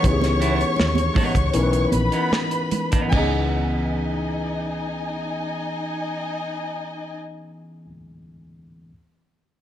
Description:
lush 1970s-style soul; 73-82 BPM; 4/4; straight; C# minor; A4 = 440 Hz
warm symphonic violin section; second line; 0.0-7.2 s; D#4 to C#6; -27 LUFS; left 2 dB
mellow tine electric piano; accompaniment; 0.0-8.9 s; E3 to B4; -26 LUFS; left 2 dB
semi-hollow electric guitar; riff; 0.0-7.9 s; E3 to E4; -30 LUFS; right 3 dB; spring reverb
vintage muted fingered electric bass; bass; 0.0-7.9 s; A#1 to D#2; -24 LUFS; equal
modern studio drum kit; drums; 0.0-3.3 s; crash cymbal, hi-hat, kick drum, snare drum; -24 LUFS; equal
congas; percussion; 0.0-3.5 s; -29 LUFS; right 5 dB
light reverb, small room ambience; -20 LUFS; side -11 dB against mid
0.0-3.1 A section; 3.1-6.4 B section
slowing down 0.0-3.1
0.0 C#m9
| 0.04 0.78 1.53 2.32 | 3.12 3.94 4.76 5.58

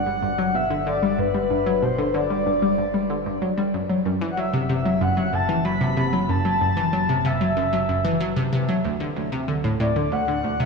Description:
ambient, sequencer-driven space music; 94 BPM; 4/4; straight; A4 = 441 Hz
breathy flute-like synth lead; melody; 0.0-10.7 s; B4 to B5; -24 LUFS; left 2 dB; lush chorus, shimmer reverb, tape echo
analog pluck; riff; 0.0-10.7 s; D2 to G3; -22 LUFS; left 1 dB; chorus, shimmer reverb, tape echo
analog drone; bass; 0.0-10.7 s; F#1 to D2; -33 LUFS; right 1 dB; chorus
wet cathedral reverb, RT60 5.2 s; in a vast, echoing space, small room reverb; -20 LUFS; side -4 dB against mid
0.0-10.7 A section
fade-in on synth drone 0.0-10.7
0.0 G5; 3.7 F#m7; 8.8 D
0.55 | 1.19 1.82 2.46 3.10 | 3.74 4.38 5.02 5.66 | 6.29 6.93 7.57 8.21 | 8.85 9.48 10.12

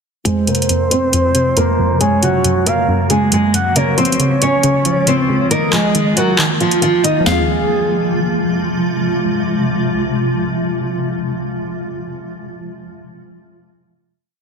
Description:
hip hop, trap; 137 BPM; 4/4; half-time; F phrygian; A4 = 440 Hz
nylon-string guitar; melody; 0.2-8.5 s; F3 to F5; -16 LUFS; right 1 dB; low-pass filter, tape echo
gliding portamento lead; second line; 0.3-8.5 s; Ab4 to Gb5; -20 LUFS; right 1 dB; chorus, tape echo
soft round pluck; accompaniment; 0.3-12.2 s; F2 to F4; -19 LUFS; left 1 dB; chorus, low-pass filter
granular cloud pad; sustained chords; 0.9-11.5 s; C3 to Gb4; -20 LUFS; equal; built-in reverb, low-pass filter
booming analog drum machine; drums; 0.3-7.4 s; handclaps, hi-hat, snare drum, toms; -18 LUFS; equal; overdrive
moderate lush hall reverb, RT60 2.2 s; dense, heavily limited modern master; -13 LUFS; side -5 dB against mid
0.3-7.3 breakdown; 7.3-10.8 final chord
filter sweep 0.3-7.3; kick muted 6.4-7.3
0.3 Fm; 2.0 Gb; 3.8 Db; 5.5 Ebsus2; 7.3 Fm
| 0.26 0.69 1.13 1.57 | 2.01 2.44 2.88 3.32 | 3.76 4.20 4.63 5.07 | 5.51 5.95 6.39 6.82 | 7.26 7.70 8.14 8.58 | 9.01 9.45 9.89 10.33

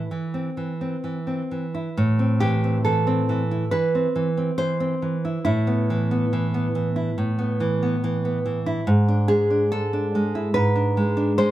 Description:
romantic duo for nylon-string guitar and classical guitar; 70 BPM; 4/4; rubato; A minor; A4 = 438 Hz
nylon-string guitar; melody; 0.0-1.5 s; barely audible
nylon-string guitar; accompaniment; 0.0-11.5 s; G#2 to C5; -20 LUFS; right 1 dB
light reverb; -20 LUFS; side -14 dB against mid
0.0-2.0 A section; 2.0-11.5 A section
0.0 Am; 5.5 E5/A; 8.9 E7/G#
0.12 1.05 | 1.97 2.85 3.72 4.59 | 5.46 6.33 7.18 8.03 | 8.88 9.72 10.57 11.41

